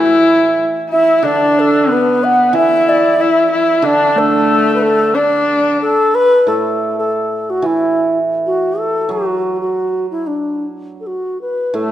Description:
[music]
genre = chinese traditional, Chinese chamber ensemble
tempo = 91 BPM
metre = 2/4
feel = rubato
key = D gong mode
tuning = A4 = 440 Hz
[part]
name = reedy xiao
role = melody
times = 0.0-11.9 s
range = D4 to F#5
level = -14 LUFS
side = equal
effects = none
[part]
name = clear horsehead fiddle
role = second line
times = 0.0-6.1, 11.8-11.9 s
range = A3 to E4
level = -15 LUFS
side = left 3 dB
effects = none
[part]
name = hammered dulcimer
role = accompaniment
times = 0.0-11.9 s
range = A2 to F#3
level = -18 LUFS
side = right 3 dB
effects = none
[sound]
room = moderate concert hall reverb, RT60 1.8 s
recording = none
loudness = -12 LUFS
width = side -12 dB against mid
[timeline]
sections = 0.0-6.5 A section; 6.5-11.9 B section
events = none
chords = none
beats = 0.58 | 1.24 1.91 | 2.56 3.20 | 3.85 4.50 | 5.14 5.81 | 6.48 7.15 | 7.81 8.46 | 9.11 9.76 | 10.42 11.08 | 11.75

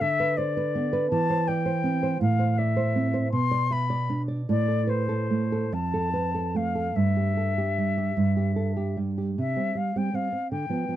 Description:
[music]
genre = romantic duo for flute and classical guitar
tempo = 47-55 BPM (dotted quarters)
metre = 6/8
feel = rubato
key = C major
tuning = A4 = 444 Hz
[part]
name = silver concert flute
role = melody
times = 0.0-11.0 s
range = C5 to C6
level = -29 LUFS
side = left 5 dB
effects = none
[part]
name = nylon-string guitar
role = accompaniment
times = 0.0-11.0 s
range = F2 to E5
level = -25 LUFS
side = right 2 dB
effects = none
[sound]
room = moderate booth ambience, RT60 0.2 s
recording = dry, close 1970s-style studio recording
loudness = -23 LUFS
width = side -12 dB against mid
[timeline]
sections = 0.0-9.4 A section; 9.4-11.0 B section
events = none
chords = 0.0 Cmaj9/D; 1.1 C/E; 2.2 Am; 3.3 Bmadd11; 4.5 Am; 5.7 F; 7.0 Emadd11/G; 9.4 C5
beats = | 0.02 1.11 | 2.21 3.33 | 4.49 5.72 | 6.96 8.16 | 9.38 10.52

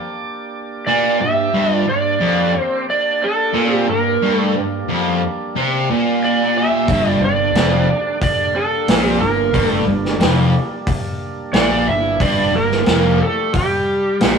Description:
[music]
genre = blues rock power trio and southern rock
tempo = 90 BPM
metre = 4/4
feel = straight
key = G dorian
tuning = A4 = 442 Hz
[part]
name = overdriven tonewheel organ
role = sustained chords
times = 0.0-14.4 s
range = D3 to D5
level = -29 LUFS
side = right 2 dB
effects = slow rotary speaker
[part]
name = overdriven slide guitar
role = melody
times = 0.9-14.4 s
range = G4 to E5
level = -18 LUFS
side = right 2 dB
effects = none
[part]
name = biting lead guitar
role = second line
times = 0.9-14.4 s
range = G3 to G4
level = -26 LUFS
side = right 4 dB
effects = overdrive
[part]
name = fuzz guitar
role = riff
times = 0.9-14.4 s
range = F2 to C3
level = -18 LUFS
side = equal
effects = distortion
[part]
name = overdriven fingered electric bass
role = bass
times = 6.9-14.4 s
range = F1 to Bb1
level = -21 LUFS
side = equal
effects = none
[part]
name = vintage drum kit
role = drums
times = 6.9-14.4 s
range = hi-hat, kick drum, snare drum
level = -20 LUFS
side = equal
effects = none
[sound]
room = moderate stone room reverb, RT60 1.2 s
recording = rough rehearsal-room recording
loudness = -14 LUFS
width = side -6 dB against mid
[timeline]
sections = 0.0-14.4 A section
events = none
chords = 0.0 Gm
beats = 0.21 0.88 | 1.55 2.21 2.88 3.55 | 4.22 4.88 5.55 6.22 | 6.88 7.55 8.22 8.88 | 9.55 10.21 10.88 11.55 | 12.21 12.88 13.55 14.21

